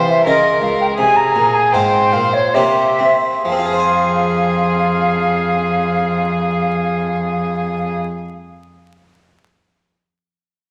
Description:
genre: classical, baroque-style sonata movement with continuo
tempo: 65-86 BPM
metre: 3/4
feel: rubato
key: F minor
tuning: A4 = 440 Hz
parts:
  - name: rich violin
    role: melody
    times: 0.0-8.0 s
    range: G4 to C5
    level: -23 LUFS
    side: equal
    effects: none
  - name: hollow concert flute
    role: second line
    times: 0.0-8.0 s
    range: Db5 to Bb5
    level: -19 LUFS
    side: equal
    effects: none
  - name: harpsichord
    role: accompaniment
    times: 0.0-8.3 s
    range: Db2 to Ab5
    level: -21 LUFS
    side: equal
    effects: none
  - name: warm cello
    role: bass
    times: 0.0-8.0 s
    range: Db2 to C4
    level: -25 LUFS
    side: equal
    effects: none
room: wet recital hall reverb, RT60 1.6 s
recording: vinyl crackle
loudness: -16 LUFS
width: mono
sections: 0.0-3.4 A section; 3.4-8.9 B section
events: slowing down 0.0-3.4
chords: 0.3 Bbm/Db; 1.0 Fm; 2.6 C7; 3.4 Fm

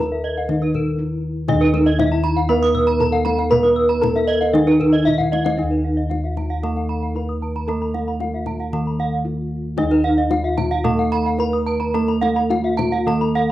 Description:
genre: Balinese gamelan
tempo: 104-120 BPM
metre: 4/4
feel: straight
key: Eb pelog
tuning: A4 = 438 Hz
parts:
  - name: gamelan-type bronze metallophone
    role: melody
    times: 0.0-13.5 s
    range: Eb4 to Cb5-40c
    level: -21 LUFS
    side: equal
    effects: cassette tape
  - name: gamelan-type bronze metallophone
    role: arpeggios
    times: 0.0-13.4 s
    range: Bb4-45c to Fb6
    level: -26 LUFS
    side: left 5 dB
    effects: none
  - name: gamelan-type bossed gongs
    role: bass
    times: 0.0-13.5 s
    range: Eb2 to Cb5-40c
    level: -23 LUFS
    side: left 1 dB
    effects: none
  - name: kendang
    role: percussion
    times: 0.0-13.4 s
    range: none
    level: -28 LUFS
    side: left 5 dB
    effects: none
  - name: gamelan-type bronze metallophone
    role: arpeggios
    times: 0.2-13.5 s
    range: Cb5-40c to Eb6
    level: -25 LUFS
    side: right 5 dB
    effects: none
  - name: gamelan-type bronze metallophone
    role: accompaniment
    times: 1.5-13.5 s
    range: Eb3 to Cb4-40c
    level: -25 LUFS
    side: right 4 dB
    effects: none
room: moderate spring reverb, RT60 1.3 s, small room ambience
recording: home recording on cassette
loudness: -17 LUFS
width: side -14 dB against mid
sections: 0.0-5.6 A section; 5.6-13.5 B section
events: break 0.7-1.5; drum fill 5.1-5.6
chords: none

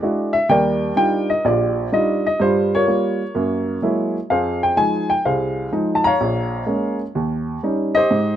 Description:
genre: solo jazz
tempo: 126 BPM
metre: 4/4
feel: swing 68% on 8ths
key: unclear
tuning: A4 = 445 Hz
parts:
  - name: warm upright piano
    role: solo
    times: 0.0-8.4 s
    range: Bb1 to Bb5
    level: -17 LUFS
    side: equal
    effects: none
room: small room ambience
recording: dry, close 1970s-style studio recording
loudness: -17 LUFS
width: side -10 dB against mid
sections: 0.0-8.4 A section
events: none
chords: 0.5 Ebmaj9; 2.4 Gm7b5; 3.3 F#9; 4.3 Fm7; 6.2 Bbm7; 7.2 Eb7

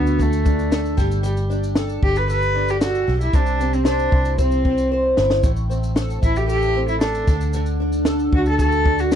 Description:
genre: acoustic pop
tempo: 114 BPM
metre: 4/4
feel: straight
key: G major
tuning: A4 = 440 Hz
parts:
  - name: warm cello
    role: melody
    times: 0.0-9.2 s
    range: A3 to B4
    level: -22 LUFS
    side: right 1 dB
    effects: none
  - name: fingerpicked twelve-string acoustic guitar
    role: accompaniment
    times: 0.0-9.2 s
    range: A2 to C5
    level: -22 LUFS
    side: equal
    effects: double-tracked left and right
  - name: vintage muted fingered electric bass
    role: bass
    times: 0.0-9.2 s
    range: G1 to D2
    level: -22 LUFS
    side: equal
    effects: none
  - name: compact cocktail drum kit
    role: drums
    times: 0.1-9.2 s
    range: kick drum, shaker, snare drum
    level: -21 LUFS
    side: equal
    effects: none
room: little or no reverb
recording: dry, close 1970s-style studio recording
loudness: -17 LUFS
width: side -9 dB against mid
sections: 0.0-9.2 A section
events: drum fill 4.9-5.4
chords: 0.0 D; 1.0 Gadd9; 3.3 C; 5.4 Am; 7.3 D

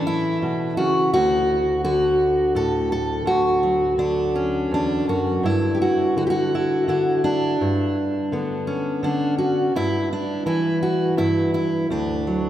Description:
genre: folk, solo fingerstyle acoustic guitar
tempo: 84 BPM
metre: 3/4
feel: straight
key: D major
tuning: A4 = 440 Hz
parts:
  - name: fingerpicked steel-string acoustic guitar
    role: solo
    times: 0.0-12.5 s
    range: D2 to A4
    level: -19 LUFS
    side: equal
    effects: none
room: wet church reverb, RT60 3.4 s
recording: recorded in a church or concert hall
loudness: -19 LUFS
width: side -12 dB against mid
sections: 0.0-12.5 A section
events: none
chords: 0.0 A; 1.1 D; 5.4 G; 9.7 Em/G; 11.9 D

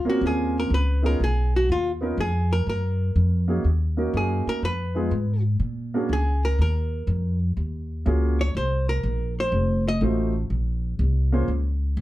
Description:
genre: jazz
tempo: 122 BPM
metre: 4/4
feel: swing 67% on 8ths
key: Bb minor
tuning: A4 = 445 Hz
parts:
  - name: archtop guitar, miked and amplified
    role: melody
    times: 0.0-10.0 s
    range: F4 to Eb5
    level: -27 LUFS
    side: equal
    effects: none
  - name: upright bass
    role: bass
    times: 0.0-12.0 s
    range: F1 to Bb2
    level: -23 LUFS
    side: equal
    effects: none
  - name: dark concert grand piano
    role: accompaniment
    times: 0.1-11.5 s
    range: Ab3 to C5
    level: -26 LUFS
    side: right 1 dB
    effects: none
room: wet club reverb, RT60 0.5 s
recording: heard from further back in the room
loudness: -21 LUFS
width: side -15 dB against mid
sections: 0.0-12.0 A section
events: hollow-body jazz guitar solo 0.0-12.0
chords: 0.0 Bbm9; 0.7 Db9; 2.7 Gb6; 4.6 Fm7b5; 5.6 Bb7alt; 6.6 Ebm11; 8.5 Bbsus2; 9.5 F7b9; 10.5 Bbmadd9

